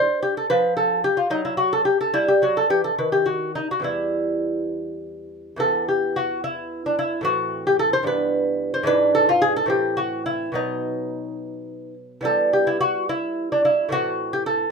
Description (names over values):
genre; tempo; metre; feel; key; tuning
classical, baroque-style dance for lute; 67-75 BPM (dotted quarters); 6/8; rubato; E minor; A4 = 443 Hz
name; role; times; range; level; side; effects
lute; solo; 0.0-14.7 s; E2 to C5; -20 LUFS; equal; none
room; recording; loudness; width
light reverb; close, detailed microphones; -19 LUFS; side -5 dB against mid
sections
0.0-5.6 A section; 5.6-14.7 B section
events
none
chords
0.0 N.C.; 2.1 Em; 3.0 N.C.; 3.8 Em; 5.6 E5; 7.3 Am; 8.1 Em/G; 8.9 E7/G#; 9.7 Am; 10.6 B; 12.3 Em; 13.9 Am